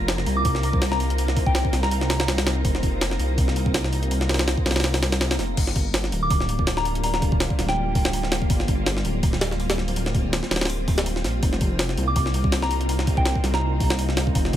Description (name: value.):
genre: drum and bass, jungle.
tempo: 164 BPM.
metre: 4/4.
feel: swing 55% on 16ths.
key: G minor.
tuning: A4 = 440 Hz.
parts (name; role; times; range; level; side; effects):
soft string machine; sustained chords; 0.0-14.6 s; G3 to F4; -30 LUFS; equal; ensemble chorus.
dark detuned saw bass; bass; 0.0-14.6 s; D1 to C2; -25 LUFS; equal; tube saturation.
wind-like tuned noise texture; texture; 0.0-5.6 s; Bb5; -38 LUFS; right 2 dB; built-in reverb.
jungle sampler-style drum kit; drums; 0.1-14.6 s; crash cymbal, hi-hat, kick drum, snare drum; -23 LUFS; equal; none.
soft synth bell; melody; 0.4-2.2, 6.2-8.0, 12.1-13.9 s; G5 to D6; -28 LUFS; equal; chorus, phaser, vintage 12-bit sampler grit, dub echo.
room: little or no reverb.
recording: none.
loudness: -20 LUFS.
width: side -11 dB against mid.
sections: 0.0-5.6 A section; 5.6-14.6 A section.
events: drop 0.0-5.6, 5.6-14.6.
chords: 0.0 F7sus4; 5.6 Gm7; 11.4 F7sus4.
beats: 0.09 0.45 0.82 | 1.18 1.55 1.92 2.28 | 2.65 3.01 3.38 3.74 | 4.11 4.48 4.84 5.21 | 5.57 5.94 6.30 6.67 | 7.04 7.40 7.77 8.13 | 8.50 8.87 9.23 9.60 | 9.96 10.33 10.70 11.06 | 11.43 11.79 12.16 12.52 | 12.89 13.26 13.62 13.99 | 14.35.